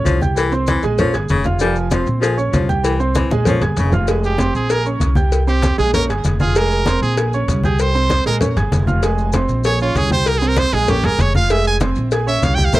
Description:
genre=latin, salsa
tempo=194 BPM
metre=4/4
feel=straight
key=unclear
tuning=A4 = 442 Hz
part: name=breathy baritone saxophone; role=second line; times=0.0-3.9 s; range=Db3 to G3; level=-21 LUFS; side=left 5 dB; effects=none
part: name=bright concert grand piano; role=accompaniment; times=0.0-12.8 s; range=F3 to Ab6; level=-21 LUFS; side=right 4 dB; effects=none
part: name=upright bass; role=bass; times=0.0-12.8 s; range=F1 to C2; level=-18 LUFS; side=equal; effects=none
part: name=congas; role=percussion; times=0.1-12.8 s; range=none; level=-20 LUFS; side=left 1 dB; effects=none
part: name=cowbell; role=percussion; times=0.1-12.8 s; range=none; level=-24 LUFS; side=left 5 dB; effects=none
part: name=maracas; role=percussion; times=0.1-12.8 s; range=none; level=-34 LUFS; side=left 6 dB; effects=none
part: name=brilliant trumpet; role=melody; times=4.3-12.8 s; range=F4 to Ab5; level=-20 LUFS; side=right 2 dB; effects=tape echo
room=little or no reverb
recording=dry, close 1970s-style studio recording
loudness=-14 LUFS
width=side -16 dB against mid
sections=0.0-4.1 A section; 4.1-12.8 B section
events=drum fill 3.3-4.1; trumpet solo 4.1-12.8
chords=0.4 C7; 1.0 Bbm7; 1.6 Fmadd9; 2.2 Bbm7; 2.8 C7; 3.5 Bbm7; 4.1 Fmadd9; 4.7 Bbm7; 5.3 C5; 5.9 Bbm7; 6.6 Fm; 7.2 Bbm7; 7.8 C5; 8.4 Bbm7; 9.0 Fm; 9.6 Bbm7; 10.3 C5; 10.9 Bbm7; 11.5 Fm; 12.1 Bbm7

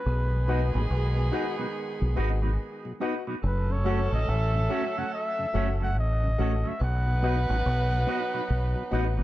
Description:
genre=reggae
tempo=71 BPM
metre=4/4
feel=swing 62% on 16ths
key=unclear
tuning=A4 = 439 Hz
part: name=warm flugelhorn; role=melody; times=0.0-9.2 s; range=B4 to F#5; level=-32 LUFS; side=equal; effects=tape echo
part: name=warm horn section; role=second line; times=0.1-9.2 s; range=D#3 to B4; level=-34 LUFS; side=right 2 dB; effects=tape echo
part: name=deep dub fingered electric bass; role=bass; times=0.1-9.2 s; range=F#1 to B1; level=-25 LUFS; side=equal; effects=none
part: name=mellow tonewheel organ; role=accompaniment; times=0.3-9.2 s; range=F#2 to F#4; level=-38 LUFS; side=left 3 dB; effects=slow rotary speaker
part: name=electric guitar with an envelope filter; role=accompaniment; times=0.5-9.2 s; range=A3 to B4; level=-36 LUFS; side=right 4 dB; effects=spring reverb, tape echo
part: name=dark upright piano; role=stabs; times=0.5-9.2 s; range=F#4 to F#5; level=-35 LUFS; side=left 6 dB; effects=none
room=studio ambience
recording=dry, close 1970s-style studio recording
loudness=-24 LUFS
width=side -15 dB against mid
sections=0.0-9.2 A section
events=none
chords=0.1 B; 3.4 F#m; 6.8 B

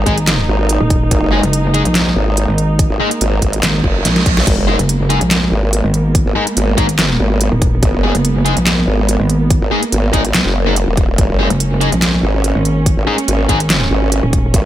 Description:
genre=heavy wobble dubstep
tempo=143 BPM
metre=4/4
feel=half-time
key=G# minor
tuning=A4 = 439 Hz
part: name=dark studio string section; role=sustained chords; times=0.0-14.7 s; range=G#3 to D#4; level=-20 LUFS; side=right 3 dB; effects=sidechain pumping, low-pass filter
part: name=formant-sweep wobble bass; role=bass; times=0.0-14.6 s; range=D#1 to B1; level=-15 LUFS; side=equal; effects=chorus, overdrive
part: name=sludgy distorted guitar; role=stabs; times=0.1-13.6 s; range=G#3 to G#4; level=-20 LUFS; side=left 2 dB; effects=overdrive, tape echo
part: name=metallic wobble bass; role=bass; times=0.1-14.5 s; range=D#1 to B1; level=-15 LUFS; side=equal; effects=distortion, chorus, overdrive
part: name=dubstep drum kit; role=drums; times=0.1-14.6 s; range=crash cymbal, handclaps, hi-hat, snare drum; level=-18 LUFS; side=equal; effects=small room ambience
part: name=electronic kick drum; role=drums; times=0.1-14.6 s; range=none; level=-16 LUFS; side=equal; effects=overdrive, small room ambience
part: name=reverse cymbal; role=sound effects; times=3.8-4.5 s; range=none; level=-23 LUFS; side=right 5 dB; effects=none
room=little or no reverb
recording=none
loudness=-12 LUFS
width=side -12 dB against mid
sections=0.0-14.7 A section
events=reverse cymbal 3.8-4.5; drum fill 4.1-4.5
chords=0.0 G#madd9

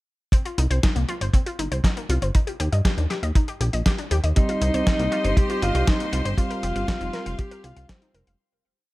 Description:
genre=italo disco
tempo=119 BPM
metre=4/4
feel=straight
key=C minor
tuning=A4 = 440 Hz
part: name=analog pluck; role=arpeggios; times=0.3-8.3 s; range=Bb3 to F5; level=-31 LUFS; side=left 2 dB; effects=chorus, cassette tape, tape echo
part: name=dusty soul sampler-style drum kit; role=drums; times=0.3-8.4 s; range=hi-hat, snare drum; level=-29 LUFS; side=equal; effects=gated reverb
part: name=kick drum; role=drums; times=0.3-8.0 s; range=none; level=-20 LUFS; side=equal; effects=none
part: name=chorused synth bass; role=bass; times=0.6-8.4 s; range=F1 to G2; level=-23 LUFS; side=equal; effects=none
part: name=warm alto saxophone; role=melody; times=4.4-8.3 s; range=C4 to G4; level=-27 LUFS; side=equal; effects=none
part: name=rich symphonic string section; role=sustained chords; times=4.4-8.4 s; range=G4 to C6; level=-32 LUFS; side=left 2 dB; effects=none
part: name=mellow tine electric piano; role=stabs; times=4.4-8.4 s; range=G3 to G4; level=-30 LUFS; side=right 2 dB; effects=none
room=small room ambience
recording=none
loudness=-20 LUFS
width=side -19 dB against mid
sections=0.3-8.4 verse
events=fade-out 5.7-8.4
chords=0.3 C5; 2.3 Eb; 4.4 Cm; 6.4 Fsus2

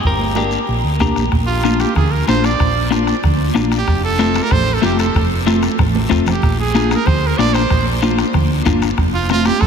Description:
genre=latin, cumbia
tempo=188 BPM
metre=4/4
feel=straight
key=unclear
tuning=A4 = 441 Hz
part: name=clean electric guitar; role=melody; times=0.0-1.0 s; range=Bb4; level=-26 LUFS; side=left 1 dB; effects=spring reverb, tape echo
part: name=hollow-body short-scale fingered electric bass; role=bass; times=0.0-9.7 s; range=F1 to D2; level=-20 LUFS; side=equal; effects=none
part: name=bombo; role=percussion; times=0.0-9.7 s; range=none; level=-20 LUFS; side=equal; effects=none
part: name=congas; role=percussion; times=0.0-9.7 s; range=none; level=-23 LUFS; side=right 8 dB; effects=none
part: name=guiro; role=percussion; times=0.0-9.7 s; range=none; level=-31 LUFS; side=left 7 dB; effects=none
part: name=clean electric guitar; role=accompaniment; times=0.4-9.5 s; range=A3 to Bb5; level=-18 LUFS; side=left 6 dB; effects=none
part: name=bright trumpet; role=second line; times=1.5-9.7 s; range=F4 to D5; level=-20 LUFS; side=right 4 dB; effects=tape echo
room=wet huge ambient reverb, RT60 7.5 s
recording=dreamy mix soaked in reverb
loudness=-13 LUFS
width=side -6 dB against mid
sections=0.0-1.3 A section; 1.3-9.7 B section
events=clean electric guitar fill 0.8-1.3; trumpet solo 1.3-9.7; drum fill 6.0-6.4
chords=0.0 Gm; 1.3 Bb; 3.9 F; 6.4 Bb; 9.0 F

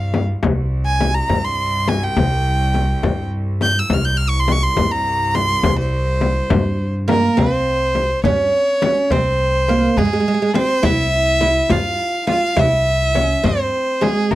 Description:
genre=Arabic maqam ensemble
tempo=69 BPM (dotted quarters)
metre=6/8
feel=straight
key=C maqam hijaz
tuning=A4 = 438 Hz
part: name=clear violin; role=melody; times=0.0-14.3 s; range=Ab4 to G6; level=-19 LUFS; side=right 1 dB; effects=none
part: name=upright bass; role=bass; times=0.0-14.3 s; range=C2 to G2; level=-20 LUFS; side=equal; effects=none
part: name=bright studio cello section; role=drone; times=0.0-7.4 s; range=C2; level=-29 LUFS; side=right 1 dB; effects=none
part: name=frame drum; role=percussion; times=0.1-14.3 s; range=none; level=-20 LUFS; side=left 3 dB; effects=none
part: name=oud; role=second line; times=7.1-14.3 s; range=Ab3 to F4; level=-20 LUFS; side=right 3 dB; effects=none
room=light reverb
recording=dry, close 1970s-style studio recording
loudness=-15 LUFS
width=side -15 dB against mid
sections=0.0-7.4 A section; 7.4-14.3 B section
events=none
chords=none

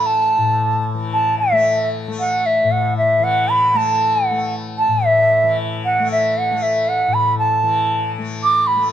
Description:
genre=indian classical, Hindustani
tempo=116 BPM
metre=7/4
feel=straight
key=unclear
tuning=A4 = 440 Hz
part: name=bansuri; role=melody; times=0.0-8.9 s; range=E5 to D6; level=-15 LUFS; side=right 1 dB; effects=none
part: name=tanpura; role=drone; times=0.0-8.9 s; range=A2 to A3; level=-24 LUFS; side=left 5 dB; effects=none
room=light reverb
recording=close, detailed microphones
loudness=-15 LUFS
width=side -10 dB against mid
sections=0.0-8.9 A section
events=speeding up 0.0-8.9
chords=none

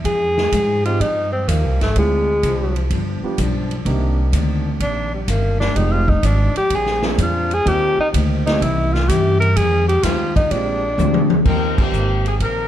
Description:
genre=jazz, big band swing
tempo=126 BPM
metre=4/4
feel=swing 69% on 8ths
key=Eb major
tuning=A4 = 435 Hz
part: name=picked steel-string acoustic guitar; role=accompaniment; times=0.0-12.7 s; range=F2 to G4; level=-27 LUFS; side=left 3 dB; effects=none
part: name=upright bass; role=bass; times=0.0-12.7 s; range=F1 to Ab2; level=-19 LUFS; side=equal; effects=none
part: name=swinging big-band drum kit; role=drums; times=0.0-12.6 s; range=crash cymbal, hi-hat, kick drum, ride cymbal, snare drum, toms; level=-23 LUFS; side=left 1 dB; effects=none
part: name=breathy tenor saxophone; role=melody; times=0.1-11.4 s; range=G3 to Bb4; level=-19 LUFS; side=equal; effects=none
part: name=warm concert grand piano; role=accompaniment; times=0.9-12.7 s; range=G3 to Ab4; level=-28 LUFS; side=right 4 dB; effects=none
part: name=clear saxophone section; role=melody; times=11.5-12.7 s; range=G4 to Bb4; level=-23 LUFS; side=left 1 dB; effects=none
part: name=clear trumpet section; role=stabs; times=11.5-12.2 s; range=Bb4 to G5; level=-30 LUFS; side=right 3 dB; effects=none
room=light reverb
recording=dark, warm production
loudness=-15 LUFS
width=side -11 dB against mid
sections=0.0-11.5 A section; 11.5-12.7 B section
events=tenor saxophone solo 0.0-11.5; drum fill 11.0-11.5; band accent 11.7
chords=0.0 Fm9; 2.0 Dm7b5; 2.9 G7; 3.9 Cm9; 5.8 Fm9; 6.7 Bb9; 7.7 Eb6; 8.6 C7b9; 9.6 Fm7; 10.5 Bb13; 11.5 Eb6

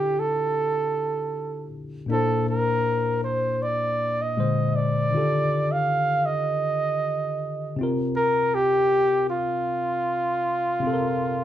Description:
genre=R&B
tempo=79 BPM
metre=4/4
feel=swing 55% on 16ths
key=unclear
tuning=A4 = 441 Hz
part: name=warm flugelhorn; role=melody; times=0.0-11.4 s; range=F4 to F5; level=-23 LUFS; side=right 1 dB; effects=none
part: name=mellow tine electric piano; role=accompaniment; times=0.0-11.4 s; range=Bb2 to C5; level=-27 LUFS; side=left 2 dB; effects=overdrive
room=moderate large studio reverb, RT60 0.8 s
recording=band playing live in one room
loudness=-22 LUFS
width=side -11 dB against mid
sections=0.0-11.4 A section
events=none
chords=0.0 Dmadd9; 2.1 Bbadd9; 4.4 Bb9; 5.1 Ebmaj9#11; 7.8 C7sus4

